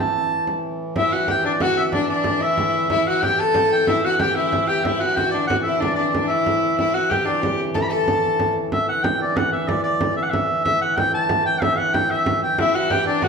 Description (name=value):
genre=medieval dance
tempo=124 BPM (dotted quarters)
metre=6/8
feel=straight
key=unclear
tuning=A4 = 440 Hz
part: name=bright shawm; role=melody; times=0.0-13.3 s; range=D5 to B5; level=-21 LUFS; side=equal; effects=none
part: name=hand-pumped harmonium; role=drone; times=0.0-13.3 s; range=A2 to E3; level=-28 LUFS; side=right 2 dB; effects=none
part: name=frame drum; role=percussion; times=0.5-13.3 s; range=none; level=-26 LUFS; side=right 2 dB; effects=none
part: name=bright fiddle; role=second line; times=1.0-8.5, 12.6-13.3 s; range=D4 to A4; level=-22 LUFS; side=left 4 dB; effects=none
room=wet large studio reverb, RT60 1.4 s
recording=band playing live in one room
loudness=-18 LUFS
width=side -5 dB against mid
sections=1.0-8.7 A section; 8.7-13.3 A section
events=none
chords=none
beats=0.47 | 0.95 1.44 | 1.93 2.41 | 2.90 3.38 | 3.87 4.36 | 4.84 5.33 | 5.81 6.30 | 6.78 7.27 | 7.75 8.23 | 8.72 9.20 | 9.69 10.17 | 10.65 11.14 | 11.62 12.11 | 12.59 13.07